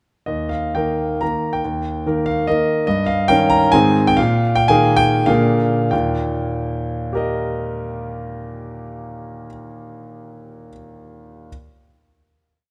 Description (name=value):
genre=classical, romantic triple-time dance for piano with dotted rhythms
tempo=85-154 BPM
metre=3/4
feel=rubato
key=Eb major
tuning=A4 = 438 Hz
part: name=clear grand piano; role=solo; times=0.3-11.5 s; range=Eb2 to Bb5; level=-19 LUFS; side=equal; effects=none
room=moderate scoring stage reverb, RT60 1.9 s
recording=close, detailed microphones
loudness=-18 LUFS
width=mono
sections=0.3-5.9 A section; 5.9-9.4 final chord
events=slowing down 2.3-5.9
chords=0.3 Eb; 2.9 Eb7/G; 3.7 Ab; 4.2 Bb7sus4; 5.3 Bb7; 5.9 Eb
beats=| 0.28 0.75 1.22 | 1.64 2.05 2.47 | 2.87 3.29 3.73 | 4.18 4.70 5.28 | 5.93 6.53 7.13 | 7.70 8.30 8.89